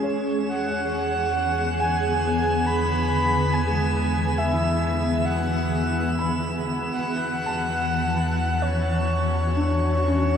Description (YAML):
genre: ambient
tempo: 70 BPM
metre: 4/4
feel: straight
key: E mixolydian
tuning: A4 = 443 Hz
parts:
  - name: granular cloud pad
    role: sustained chords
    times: 0.0-10.4 s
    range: D3 to A5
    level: -26 LUFS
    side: equal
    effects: built-in reverb
  - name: felt-muted upright piano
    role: arpeggios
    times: 0.0-10.4 s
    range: E3 to B5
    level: -31 LUFS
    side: left 1 dB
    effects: ping-pong delay
  - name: warm sub bass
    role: bass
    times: 0.0-10.4 s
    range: E2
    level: -27 LUFS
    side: equal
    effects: none
  - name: drifting glass-harmonics texture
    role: texture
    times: 0.0-10.4 s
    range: E7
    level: -36 LUFS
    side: right 2 dB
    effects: chorus, built-in reverb
  - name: breathy flute-like synth lead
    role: melody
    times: 0.5-10.4 s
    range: C#5 to B5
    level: -25 LUFS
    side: equal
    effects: lush chorus, ping-pong delay
room: wet shimmer reverb, RT60 8.3 s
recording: cassette tape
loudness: -21 LUFS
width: side -8 dB against mid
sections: 0.0-10.4 A section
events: fade-in on sub bass 0.0-10.4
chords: 0.0 E7; 6.9 Dmaj7/E